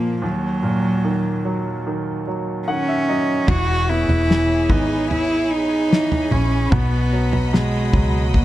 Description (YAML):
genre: pop ballad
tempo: 74 BPM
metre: 4/4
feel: straight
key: unclear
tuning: A4 = 440 Hz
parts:
  - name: warm cello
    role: melody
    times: 0.0-8.4 s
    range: F#3 to F#4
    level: -21 LUFS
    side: equal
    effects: none
  - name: bright grand piano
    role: accompaniment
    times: 0.0-8.4 s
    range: D#2 to F#5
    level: -23 LUFS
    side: right 1 dB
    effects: none
  - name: clear studio string section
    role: sustained chords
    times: 3.5-8.4 s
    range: F#4 to B5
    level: -30 LUFS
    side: left 1 dB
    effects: none
  - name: vintage muted fingered electric bass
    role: bass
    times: 3.5-8.4 s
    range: E1 to C#2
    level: -22 LUFS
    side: equal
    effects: none
  - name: damped 70s drum kit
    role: drums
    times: 3.5-8.4 s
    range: crash cymbal, kick drum, snare drum, toms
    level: -20 LUFS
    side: equal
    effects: none
room: light reverb, small room ambience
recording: dark, warm production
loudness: -17 LUFS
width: side -14 dB against mid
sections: 0.0-3.5 A section; 3.5-8.4 B section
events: grand piano fill 2.3-3.5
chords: 0.2 D#m7; 3.5 E6; 6.7 B